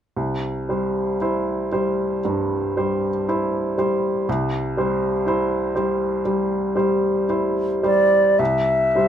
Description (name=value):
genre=classical, romantic duo for flute and grand piano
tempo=51-61 BPM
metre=4/4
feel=rubato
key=C major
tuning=A4 = 440 Hz
part: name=clear baby grand piano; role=accompaniment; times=0.2-9.1 s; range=C2 to C5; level=-20 LUFS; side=equal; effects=none
part: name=silver concert flute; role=melody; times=7.8-9.1 s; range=D5 to E5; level=-16 LUFS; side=right 1 dB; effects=none
room=light reverb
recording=none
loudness=-19 LUFS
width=side -9 dB against mid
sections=0.2-8.4 A section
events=none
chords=0.2 C